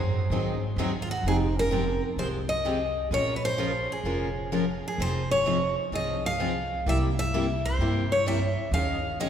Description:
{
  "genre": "acoustic string swing (jazz manouche)",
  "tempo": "128 BPM",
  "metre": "4/4",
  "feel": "swing 66% on 8ths",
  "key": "F minor",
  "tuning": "A4 = 440 Hz",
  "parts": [
    { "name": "picked steel-string acoustic guitar", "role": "melody", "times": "0.0-9.3 s", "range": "E#4 to F5", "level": "-28 LUFS", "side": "equal", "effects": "none" },
    { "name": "upright bass", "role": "bass", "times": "0.0-9.3 s", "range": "F1 to G#2", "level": "-29 LUFS", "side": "equal", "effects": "none" },
    { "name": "picked acoustic archtop guitar", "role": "accompaniment", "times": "0.3-9.3 s", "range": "C3 to Bb4", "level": "-35 LUFS", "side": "right 4 dB", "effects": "none" },
    { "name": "picked steel-string acoustic guitar", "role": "accompaniment", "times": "0.3-9.3 s", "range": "C3 to Bb4", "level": "-32 LUFS", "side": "left 4 dB", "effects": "none" },
    { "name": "mellow bass clarinet", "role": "second line", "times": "1.3-2.1 s", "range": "C4 to Eb4", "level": "-33 LUFS", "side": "right 6 dB", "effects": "none" }
  ],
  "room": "wet church reverb, RT60 2.5 s",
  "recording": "recorded in a church or concert hall",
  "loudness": "-24 LUFS",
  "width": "side -9 dB against mid",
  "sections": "0.0-1.3 A section; 1.3-9.3 B section",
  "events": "none",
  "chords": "0.0 G#7; 1.3 Fmadd9; 3.1 Bbm7; 5.0 Fm7; 6.9 C7; 8.7 Eb7sus4",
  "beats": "0.32 0.79 | 1.25 1.72 2.19 2.65 | 3.12 3.59 4.05 4.52 | 4.99 5.46 5.92 6.39 | 6.86 7.33 7.79 8.26 | 8.73 9.20"
}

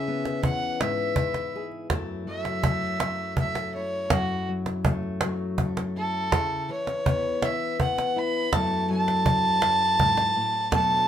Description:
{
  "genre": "acoustic folk duo or small band",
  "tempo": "54 BPM (dotted quarters)",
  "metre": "6/8",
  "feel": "straight",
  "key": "F# minor",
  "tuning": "A4 = 442 Hz",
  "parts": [
    { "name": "dark fiddle", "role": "melody", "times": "0.0-11.1 s", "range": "F#4 to B5", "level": "-26 LUFS", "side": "right 1 dB", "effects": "none" },
    { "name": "fingerpicked steel-string acoustic guitar", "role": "accompaniment", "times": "0.0-11.1 s", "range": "F#2 to A4", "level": "-29 LUFS", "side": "left 3 dB", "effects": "none" },
    { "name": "cajon", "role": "percussion", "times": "0.1-10.9 s", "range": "none", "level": "-26 LUFS", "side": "right 2 dB", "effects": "none" }
  ],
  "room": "light reverb",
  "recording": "minimal, uncompressed stereo recording",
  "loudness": "-23 LUFS",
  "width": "side -9 dB against mid",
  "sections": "0.0-1.9 A section; 1.9-10.7 B section",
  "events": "fiddle solo 1.9-10.7",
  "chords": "0.0 C#m7; 1.9 F#m7; 6.3 C#m7; 8.5 F#m7",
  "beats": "0.80 | 1.91 3.01 | 4.11 5.22 | 6.32 7.42 | 8.53 9.63 | 10.73"
}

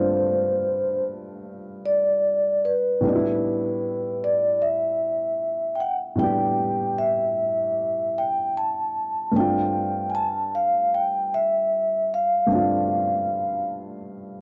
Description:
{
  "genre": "hip hop",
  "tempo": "76 BPM",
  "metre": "4/4",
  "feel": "swing 66% on 16ths",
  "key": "unclear",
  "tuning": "A4 = 439 Hz",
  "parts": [
    { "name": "vibraphone with soft mallets", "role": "melody", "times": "0.0-13.7 s", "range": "B4 to A5", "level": "-24 LUFS", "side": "equal", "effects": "none" },
    { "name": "dark upright piano", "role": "accompaniment", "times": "0.0-14.4 s", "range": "G2 to G4", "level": "-30 LUFS", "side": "equal", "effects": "none" }
  ],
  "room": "light reverb, studio reverb",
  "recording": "worn, warbling old tape, cassette tape, warbly pitch drift, nothing above 11.0 kHz",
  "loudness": "-23 LUFS",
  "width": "mono",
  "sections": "0.0-14.4 A section",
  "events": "none",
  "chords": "0.0 G9sus4; 3.0 A9sus4; 9.3 G9sus4",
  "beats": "0.66 1.45 2.24 | 3.03 3.82 4.61 5.40 | 6.19 6.98 7.77 8.56 | 9.35 10.14 10.93 11.72 | 12.51 13.30 14.09"
}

